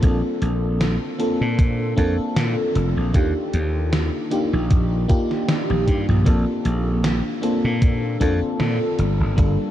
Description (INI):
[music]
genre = vaporwave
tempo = 77 BPM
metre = 4/4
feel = swing 55% on 16ths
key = Bb major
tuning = A4 = 440 Hz
[part]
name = FM electric piano with soft pad layer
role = accompaniment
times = 0.0-9.7 s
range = G3 to A4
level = -23 LUFS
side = left 1 dB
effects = lush chorus, ping-pong delay
[part]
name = slap bass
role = bass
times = 0.0-9.6 s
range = F1 to Bb2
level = -21 LUFS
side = equal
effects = none
[part]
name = electronic kick drum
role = drums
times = 0.0-9.6 s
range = none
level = -18 LUFS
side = equal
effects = overdrive, small room ambience
[part]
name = gated 80s digital drum machine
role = drums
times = 0.0-9.6 s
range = hi-hat, snare drum, toms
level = -27 LUFS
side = equal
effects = gated reverb, gated reverb snare, overdrive, small room ambience
[sound]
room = moderate huge ambient reverb, RT60 8.2 s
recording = dreamy mix soaked in reverb, cassette tape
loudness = -18 LUFS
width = side -12 dB against mid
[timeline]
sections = 0.0-9.7 A section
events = drum fill 5.5-6.3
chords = 0.0 Bbmaj9; 3.1 Ebmaj9; 6.3 Bbmaj9; 9.0 Gm9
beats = | 0.03 0.81 1.59 2.37 | 3.15 3.92 4.70 5.48 | 6.26 7.04 7.82 8.60 | 9.38